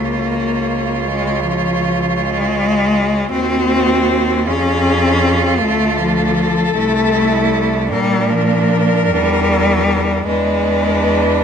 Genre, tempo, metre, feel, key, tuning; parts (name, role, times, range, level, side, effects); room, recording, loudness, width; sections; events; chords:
classical, lyrical piece for cello ensemble; 52 BPM (dotted quarters); 6/8; rubato; Bb minor; A4 = 437 Hz
rich cello; melody; 0.0-11.4 s; Ab4 to Db5; -21 LUFS; left 7 dB
rich cello; second line; 0.0-11.4 s; D4 to Gb4; -20 LUFS; right 10 dB
warm cello; accompaniment; 0.0-11.4 s; F3 to Db4; -17 LUFS; left 3 dB
rich cello; bass; 0.0-11.4 s; C2 to Bb2; -20 LUFS; right 2 dB
moderate recital hall reverb, RT60 1.5 s; -13 LUFS; side -7 dB against mid
0.0-11.4 A section
0.0 Bbm/Db; 3.3 Cdim/Eb; 4.5 Db/F; 5.6 Dm; 6.8 Am/C; 7.9 Bb; 9.1 Em7b5; 10.3 E7